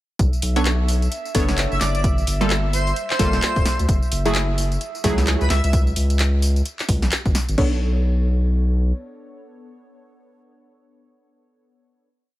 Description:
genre	UK garage, two-step garage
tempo	130 BPM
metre	4/4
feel	swing 60% on 16ths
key	unclear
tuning	A4 = 440 Hz
part	airy breathy pad	sustained chords	0.2-5.7 s	E5	-33 LUFS	right 2 dB	chorus, sidechain pumping
part	saturated sub bass	bass	0.2-8.9 s	D1 to D2	-20 LUFS	equal	sidechain pumping
part	electronic kick drum	drums	0.2-7.7 s	none	-21 LUFS	equal	none
part	garage drum kit	drums	0.2-7.7 s	crash cymbal, handclaps, hi-hat, snare drum, tambourine	-26 LUFS	equal	none
part	punchy chord stab	stabs	0.6-12.1 s	F#3 to C#5	-26 LUFS	right 1 dB	chorus, cassette tape, tape echo
part	airy dreamy lead	melody	1.7-5.7 s	B4 to E5	-27 LUFS	equal	chorus, tape echo
room	little or no reverb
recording	none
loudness	-18 LUFS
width	side -15 dB against mid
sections	0.2-7.6 drop; 7.6-11.3 final chord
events	drop 0.2-7.6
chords	0.2 Bm9; 2.0 Gm9; 3.9 F#m9; 5.5 C#m; 7.6 Bm9

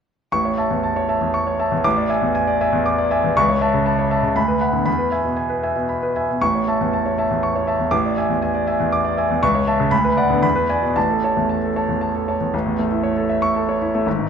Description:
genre	classical, virtuoso piano study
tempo	118 BPM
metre	3/4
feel	rubato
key	A major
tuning	A4 = 441 Hz
part	clear grand piano	solo	0.3-14.3 s	G#1 to D6	-17 LUFS	equal	none
room	wet recital hall reverb, RT60 1.5 s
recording	minimal, uncompressed stereo recording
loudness	-17 LUFS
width	side -7 dB against mid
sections	0.3-12.5 A section; 12.5-14.3 B section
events	none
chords	0.3 A; 1.8 E7/A; 3.4 A/C#; 4.4 Bm/D; 4.9 E; 6.4 A; 7.9 E7/A; 9.4 A/C#; 9.9 Bm/D; 10.4 E7; 11.0 A

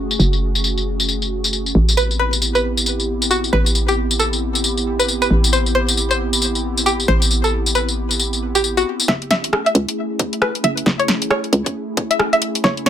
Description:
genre	UK garage, two-step garage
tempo	135 BPM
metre	4/4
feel	swing 60% on 16ths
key	F# minor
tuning	A4 = 440 Hz
part	airy breathy pad	sustained chords	0.0-12.9 s	A3 to G#4	-24 LUFS	right 1 dB	chorus, sidechain pumping
part	hollow knocking FM bass	bass	0.0-12.9 s	F#1 to C#2	-20 LUFS	equal	high-pass filter
part	garage drum kit	drums	0.1-12.9 s	hi-hat, rim click, snare drum, tambourine	-19 LUFS	left 1 dB	low-pass filter on perc, low-pass filter on snare, low-pass filter on hats
part	string-like resonator pluck	melody	2.0-12.9 s	F#4 to E5	-19 LUFS	equal	chorus, ping-pong delay
part	electronic kick drum	drums	9.1-12.7 s	none	-23 LUFS	equal	high-pass filter on kick
room	moderate small room reverb, RT60 0.5 s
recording	none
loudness	-15 LUFS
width	side -10 dB against mid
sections	0.0-9.1 A section; 9.1-12.9 B section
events	filter sweep on analog synth pad 0.0-9.1, 9.1-12.9; build-up 9.1-12.9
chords	0.0 F#madd9; 1.8 Am9; 9.1 F#m9

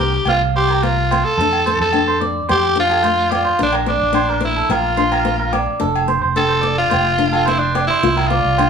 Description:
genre	highlife guitar band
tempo	108 BPM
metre	4/4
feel	straight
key	F major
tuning	A4 = 440 Hz
part	breathy tenor saxophone	melody	0.0-8.7 s	D4 to A4	-17 LUFS	left 1 dB	none
part	flamenco guitar	accompaniment	0.0-8.7 s	A3 to F4	-23 LUFS	left 8 dB	none
part	clean electric guitar	arpeggios	0.0-8.7 s	G4 to F5	-20 LUFS	right 5 dB	none
part	fingered electric bass	bass	0.0-8.7 s	F1 to F2	-22 LUFS	right 1 dB	none
part	agogo bells	percussion	0.3-8.7 s	none	-24 LUFS	right 3 dB	none
room	moderate large studio reverb, RT60 1.1 s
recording	band playing live in one room, small room ambience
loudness	-14 LUFS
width	side -6 dB against mid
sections	0.0-8.7 A section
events	none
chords	0.0 Csus4; 1.4 F; 3.6 Bb; 5.8 F; 8.0 Csus4

